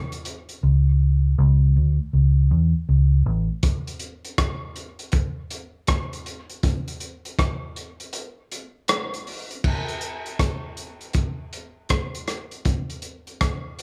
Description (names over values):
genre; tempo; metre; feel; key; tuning
dub reggae; 80 BPM; 4/4; swing 62% on 16ths; unclear; A4 = 437 Hz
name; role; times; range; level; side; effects
crunchy breakbeat drum kit; drums; 0.1-13.8 s; crash cymbal, hi-hat, kick drum, rim click; -27 LUFS; equal; none
vintage muted fingered electric bass; bass; 0.6-3.5 s; A1 to E2; -19 LUFS; equal; none
room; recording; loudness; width
little or no reverb; small room ambience; -23 LUFS; mono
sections
0.0-9.6 A section; 9.6-13.8 B section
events
part muted 0.6-3.6; break 3.6-9.6; kick muted 8.1-9.6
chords
none